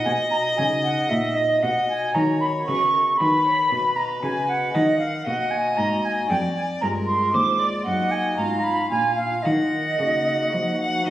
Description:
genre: classical, baroque-style sonata movement with continuo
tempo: 115 BPM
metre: 3/4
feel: straight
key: Eb minor from 4.7 s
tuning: A4 = 440 Hz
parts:
  - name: warm violin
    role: melody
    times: 0.0-11.1 s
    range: Bb4 to Gb5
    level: -27 LUFS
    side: left 1 dB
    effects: none
  - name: concert flute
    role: second line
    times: 0.0-11.1 s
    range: Gb4 to D6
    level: -22 LUFS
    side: right 1 dB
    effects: none
  - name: pipe organ, stopped flute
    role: accompaniment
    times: 0.0-11.1 s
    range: Eb2 to D#5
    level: -30 LUFS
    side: equal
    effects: none
  - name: rich cello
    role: bass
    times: 0.0-11.1 s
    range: Eb2 to F3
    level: -27 LUFS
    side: equal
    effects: none
room: wet recital hall reverb, RT60 1.7 s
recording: recorded on a phone in the room, studio reverb, compression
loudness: -19 LUFS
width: side -13 dB against mid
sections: 0.0-11.1 A section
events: none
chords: 0.1 Bmaj9; 1.6 B; 4.7 Ebm; 6.3 Ddim/F; 7.9 Ebm/Gb; 8.4 Fm7b5/Ab; 8.9 Bb7; 9.4 Ebm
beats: | 0.06 0.58 1.10 | 1.62 2.15 2.67 | 3.19 3.71 4.23 | 4.74 5.26 5.78 | 6.29 6.81 7.33 | 7.85 8.38 8.91 | 9.44 9.99 10.53 | 11.06

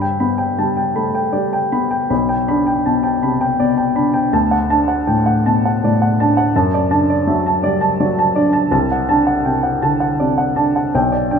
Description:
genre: classical, romantic nocturne for solo piano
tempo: 81 BPM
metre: 3/4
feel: rubato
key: unclear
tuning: A4 = 440 Hz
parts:
  - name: warm baby grand piano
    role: solo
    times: 0.0-11.4 s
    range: B1 to B5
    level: -14 LUFS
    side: equal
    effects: none
room: wet recital hall reverb, RT60 1.7 s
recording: minimal, uncompressed stereo recording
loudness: -14 LUFS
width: side -6 dB against mid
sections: 0.0-11.4 A section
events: none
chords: 0.0 G; 2.1 G/B; 4.3 D; 6.5 D/F#; 8.7 D7/C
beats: 0.58 1.34 | 2.10 2.87 3.60 | 4.34 5.08 5.83 | 6.55 7.26 7.99 | 8.72 9.46 10.20 | 10.94

